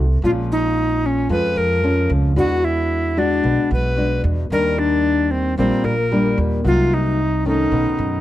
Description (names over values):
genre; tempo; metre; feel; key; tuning
bossa nova; 112 BPM; 4/4; straight; unclear; A4 = 442 Hz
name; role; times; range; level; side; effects
nylon-string guitar; accompaniment; 0.0-8.2 s; F2 to F#4; -22 LUFS; left 1 dB; none
upright bass; bass; 0.0-8.2 s; Bb1 to F#2; -21 LUFS; right 1 dB; none
bright reedy tenor recorder; melody; 0.2-8.2 s; C4 to Cb5; -19 LUFS; left 1 dB; none
room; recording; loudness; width
little or no reverb; dark, warm production; -16 LUFS; side -14 dB against mid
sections
0.0-8.2 A section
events
none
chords
0.2 Bbm7; 2.4 E9; 4.5 Ebmaj7; 6.7 Cm7b5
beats
| 0.23 0.77 1.30 1.84 | 2.37 2.91 3.44 3.98 | 4.51 5.05 5.58 6.12 | 6.65 7.19 7.72